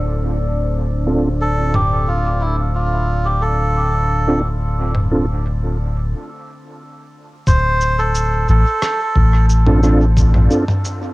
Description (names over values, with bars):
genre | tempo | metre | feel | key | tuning
ambient dub | 89 BPM | 4/4 | straight | D minor | A4 = 441 Hz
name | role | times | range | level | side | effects
deep dark ambient pad | sustained chords | 0.0-6.1 s | D4 to D5 | -28 LUFS | left 1 dB | chorus, built-in reverb, vintage 12-bit sampler grit, cassette tape
soft dub sub bass | bass | 0.0-10.5 s | D1 to A1 | -16 LUFS | equal | tube saturation
mellow tonewheel organ | stabs | 1.1-5.3, 9.7-10.6 s | C4 to A4 | -21 LUFS | right 2 dB | chorus vibrato, slow rotary speaker, low-pass filter, cassette tape, dub echo
melodica | melody | 1.4-9.5 s | E4 to C5 | -21 LUFS | right 1 dB | dub echo
lo-fi sampler-style drum kit | drums | 1.7-11.0 s | cabasa, rim click, toms | -23 LUFS | equal | cassette tape, dub echo
electronic kick drum | drums | 7.5-10.3 s | none | -16 LUFS | equal | cassette tape
room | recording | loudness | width
light reverb, digital ambience | home recording on cassette | -14 LUFS | side -20 dB against mid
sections
0.0-7.5 A section; 7.5-11.1 B section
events
break 6.1-7.5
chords
0.0 D7(no3); 7.5 Dm7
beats
0.06 0.73 1.41 | 2.08 2.75 3.43 4.10 | 4.78 5.45 6.13 6.80 | 7.47 8.15 8.82 9.50 | 10.17 10.85